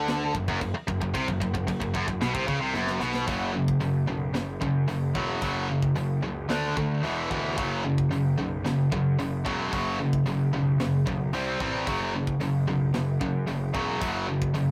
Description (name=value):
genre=heavy metal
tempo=112 BPM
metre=4/4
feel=straight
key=unclear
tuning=A4 = 439 Hz
part: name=tight distorted guitar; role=riff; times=0.0-14.7 s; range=E2 to D4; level=-31 LUFS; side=equal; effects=distortion
part: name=tight distorted guitar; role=riff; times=0.0-14.7 s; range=E2 to D4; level=-31 LUFS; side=equal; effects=distortion
part: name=fuzz picked electric bass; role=bass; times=0.0-14.7 s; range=E1 to F#2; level=-36 LUFS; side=equal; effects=overdrive
part: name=tight metal drum kit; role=drums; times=0.1-14.7 s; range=china cymbal, hi-hat, kick drum, snare drum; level=-37 LUFS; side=equal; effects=none
room=light reverb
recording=rough rehearsal-room recording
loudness=-27 LUFS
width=mono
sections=0.0-3.3 A section; 3.3-14.7 B section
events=drum fill 2.7-3.3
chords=0.0 F#5; 6.5 D5; 7.0 E5; 7.6 F#5; 11.3 C5; 11.9 F#5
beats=0.08 0.61 | 1.15 1.68 2.21 2.75 | 3.28 3.82 4.35 4.89 | 5.43 5.96 6.50 7.04 | 7.57 8.11 8.65 9.19 | 9.72 10.26 10.80 11.33 | 11.87 12.41 12.95 13.48 | 14.02 14.56